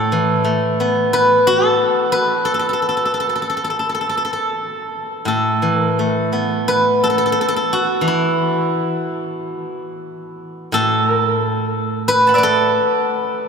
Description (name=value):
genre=chinese traditional, Chinese solo plucked strings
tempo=88 BPM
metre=4/4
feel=rubato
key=A zhi mode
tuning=A4 = 440 Hz
part: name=steel-string zither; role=solo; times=0.0-13.5 s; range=A2 to A5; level=-15 LUFS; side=equal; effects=none
room=wet cathedral reverb, RT60 5.4 s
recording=in a vast, echoing space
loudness=-15 LUFS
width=side -6 dB against mid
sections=0.0-13.5 A section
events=none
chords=none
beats=| 0.12 0.79 1.46 2.13 | 2.81 3.50 4.20 4.92 | 5.63 6.33 7.03 7.71 | 8.38 9.05 9.73 10.40 | 11.08 11.75 12.42 13.12